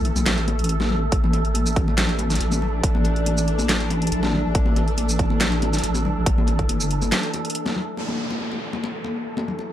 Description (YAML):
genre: deep dubstep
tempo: 140 BPM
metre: 4/4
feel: half-time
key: unclear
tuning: A4 = 439 Hz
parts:
  - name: bowed-like drone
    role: sustained chords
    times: 0.0-9.7 s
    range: E3 to A4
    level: -30 LUFS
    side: equal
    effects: built-in reverb, phaser
  - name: deep soft wobble bass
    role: bass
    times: 0.0-7.1 s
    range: G1 to B1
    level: -22 LUFS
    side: equal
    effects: chorus
  - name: wind-like tuned noise texture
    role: texture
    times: 0.0-9.7 s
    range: A4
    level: -30 LUFS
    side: right 2 dB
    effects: built-in reverb
  - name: dubstep drum kit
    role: drums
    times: 0.1-7.7 s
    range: handclaps, hi-hat, shaker, snare drum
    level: -25 LUFS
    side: equal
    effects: overdrive, low-pass filter on hats, low-pass filter on cymbals, low-pass filter on perc, low-pass filter on snare, low-pass filter on room
  - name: congas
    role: percussion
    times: 0.2-9.7 s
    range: none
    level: -28 LUFS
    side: left 3 dB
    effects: dub echo
  - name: electronic kick drum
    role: drums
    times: 1.1-6.7 s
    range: none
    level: -21 LUFS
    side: equal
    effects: overdrive
  - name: downlifter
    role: sound effects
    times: 8.0-9.7 s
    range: none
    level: -32 LUFS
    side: equal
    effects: none
room: little or no reverb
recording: dry, gritty hardware recording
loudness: -19 LUFS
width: side -12 dB against mid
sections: 0.0-8.0 A section; 8.0-9.7 B section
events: break 7.1-8.0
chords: 0.0 A5